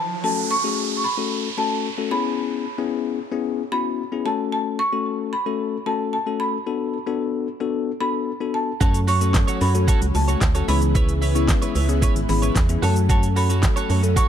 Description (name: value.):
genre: dance-pop.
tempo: 112 BPM.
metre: 4/4.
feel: straight.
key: F# minor.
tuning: A4 = 440 Hz.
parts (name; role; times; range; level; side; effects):
marimba with medium hard mallets; melody; 0.0-14.3 s; A5 to C#6; -26 LUFS; right 1 dB; none.
riser and downlifter; sound effects; 0.0-4.5 s; none; -29 LUFS; right 4 dB; none.
bell-like tine electric piano; accompaniment; 0.2-14.3 s; G#3 to A4; -25 LUFS; left 9 dB; sidechain pumping.
ensemble organ-string; sustained chords; 8.8-14.3 s; C#3 to E4; -27 LUFS; equal; ensemble chorus, sidechain pumping.
twelve-string electric guitar; riff; 8.8-14.3 s; E4 to C#5; -29 LUFS; right 6 dB; wide subtle chorus.
organ-like FM bass; bass; 8.8-14.2 s; G#1 to F#2; -20 LUFS; right 1 dB; sidechain pumping.
pop drum kit; drums; 8.8-14.3 s; handclaps, hi-hat, kick drum, shaker, snare drum; -21 LUFS; right 1 dB; none.
room: light reverb, digital ambience.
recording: dark, warm production.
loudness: -19 LUFS.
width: side -9 dB against mid.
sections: 0.2-14.3 A section.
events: riser 0.0; stop 0.0.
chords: 0.2 F#m; 2.1 C#m7; 4.3 F#m; 6.7 Bm7; 8.8 F#m; 10.7 C#m7; 12.8 F#m.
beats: | 0.24 0.77 1.31 1.85 | 2.38 2.92 3.45 3.99 | 4.52 5.06 5.60 6.13 | 6.67 7.20 7.74 8.27 | 8.81 9.35 9.88 10.42 | 10.95 11.49 12.02 12.56 | 13.10 13.63 14.17.